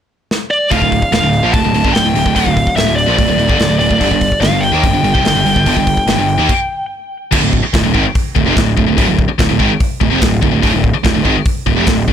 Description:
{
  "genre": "heavy metal",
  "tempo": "145 BPM",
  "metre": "4/4",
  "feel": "straight",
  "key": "D minor",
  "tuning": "A4 = 440 Hz",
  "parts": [
    { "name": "modern studio drum kit", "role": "drums", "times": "0.3-12.1 s", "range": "crash cymbal, hi-hat, kick drum, snare drum", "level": "-16 LUFS", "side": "equal", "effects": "none" },
    { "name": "high-gain lead guitar", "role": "melody", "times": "0.5-6.9 s", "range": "D5 to A5", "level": "-15 LUFS", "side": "equal", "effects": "distortion, tape echo" },
    { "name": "distorted electric guitar", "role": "riff", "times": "0.7-12.1 s", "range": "D2 to Bb3", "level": "-18 LUFS", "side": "right 12 dB", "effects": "overdrive" },
    { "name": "scooped high-gain guitar", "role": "riff", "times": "0.7-12.1 s", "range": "D2 to Bb3", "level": "-18 LUFS", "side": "left 12 dB", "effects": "distortion" },
    { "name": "fuzz picked electric bass", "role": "bass", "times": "0.7-12.1 s", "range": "D1 to Eb2", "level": "-17 LUFS", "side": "equal", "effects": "overdrive" }
  ],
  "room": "studio ambience",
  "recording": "blown-out, overdriven recording, overdrive",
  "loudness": "-11 LUFS",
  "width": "side -9 dB against mid",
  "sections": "0.7-7.3 A section; 7.3-12.1 B section",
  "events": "drum fill 0.3-0.7; stop 6.5-7.3",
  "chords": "0.0 N.C.; 0.7 Dm; 4.0 G5; 6.9 N.C.; 7.3 Dm",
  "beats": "0.30 | 0.71 1.12 1.53 1.95 | 2.36 2.77 3.19 3.60 | 4.01 4.42 4.84 5.25 | 5.67 6.08 6.49 6.91 | 7.32 7.74 8.15 8.56 | 8.98 9.39 9.80 10.22 | 10.63 11.04 11.46 11.87"
}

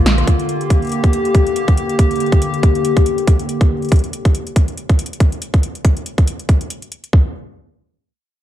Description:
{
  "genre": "IDM",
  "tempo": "140 BPM",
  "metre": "4/4",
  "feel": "swing 56% on 16ths",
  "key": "unclear",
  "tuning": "A4 = 440 Hz",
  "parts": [
    { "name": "hollow soft pad", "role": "sustained chords", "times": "0.0-3.9 s", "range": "D3 to G4", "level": "-18 LUFS", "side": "left 2 dB", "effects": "chorus, vintage 12-bit sampler grit" },
    { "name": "electro analog drum machine", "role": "drums", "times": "0.1-7.1 s", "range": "hi-hat, rim click, snare drum", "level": "-24 LUFS", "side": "equal", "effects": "overdrive, digital delay" },
    { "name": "electronic kick drum", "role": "drums", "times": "0.3-7.2 s", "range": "none", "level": "-14 LUFS", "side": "equal", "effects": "none" }
  ],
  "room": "light reverb",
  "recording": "dark, warm production",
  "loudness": "-13 LUFS",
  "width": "side -12 dB against mid",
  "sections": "0.0-7.3 A section; 7.3-8.4 B section",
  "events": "none",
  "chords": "0.5 Gm; 3.9 N.C.",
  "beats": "0.06 | 0.49 0.92 1.35 1.77 | 2.20 2.63 3.06 3.49 | 3.92 4.35 4.78 5.20 | 5.63 6.06 6.49 6.92"
}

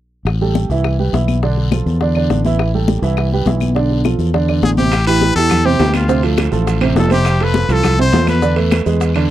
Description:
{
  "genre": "latin, salsa",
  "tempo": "206 BPM",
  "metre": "4/4",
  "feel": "straight",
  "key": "A minor",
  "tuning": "A4 = 440 Hz",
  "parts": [
    { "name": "fingered electric bass", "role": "bass", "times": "0.3-9.3 s", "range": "F1 to E2", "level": "-16 LUFS", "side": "left 1 dB", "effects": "none" },
    { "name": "bongos", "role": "percussion", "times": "0.3-9.2 s", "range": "none", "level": "-24 LUFS", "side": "left 8 dB", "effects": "none" },
    { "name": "claves", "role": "percussion", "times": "0.3-9.3 s", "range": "none", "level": "-31 LUFS", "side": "left 14 dB", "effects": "none" },
    { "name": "congas", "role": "percussion", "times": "0.3-9.3 s", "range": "none", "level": "-20 LUFS", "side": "left 4 dB", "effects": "none" },
    { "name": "guiro", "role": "percussion", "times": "0.3-9.3 s", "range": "none", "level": "-34 LUFS", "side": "left 14 dB", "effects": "none" },
    { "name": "warm grand piano", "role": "accompaniment", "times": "0.4-9.3 s", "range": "C3 to E5", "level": "-18 LUFS", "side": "right 6 dB", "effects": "none" },
    { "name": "brilliant trumpet", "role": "melody", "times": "4.6-8.6 s", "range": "F4 to C5", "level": "-18 LUFS", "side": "left 3 dB", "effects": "none" },
    { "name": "maracas", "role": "percussion", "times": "4.9-9.3 s", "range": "none", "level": "-40 LUFS", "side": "right 19 dB", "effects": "none" },
    { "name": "timbales", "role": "percussion", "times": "4.9-9.3 s", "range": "none", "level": "-26 LUFS", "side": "right 7 dB", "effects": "none" }
  ],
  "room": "light reverb",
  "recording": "dry, close 1970s-style studio recording, faint mains hum",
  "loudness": "-12 LUFS",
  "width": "side -13 dB against mid",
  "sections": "0.3-4.9 A section; 4.9-9.3 B section",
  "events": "none",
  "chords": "0.3 Am7; 0.8 Cmaj7; 1.4 Bm7b5; 2.0 Asus4; 2.6 Am7; 3.2 Cmaj7; 3.8 Bm7b5; 4.3 Amadd11; 4.9 Am9; 6.1 Dm7; 7.3 F; 8.4 E7sus4",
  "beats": "| 0.26 0.56 0.85 1.14 | 1.43 1.72 2.01 2.30 | 2.59 2.89 3.18 3.47 | 3.76 4.05 4.34 4.63 | 4.93 5.22 5.51 5.80 | 6.09 6.38 6.67 6.96 | 7.25 7.55 7.84 8.13 | 8.42 8.71 9.00 9.30"
}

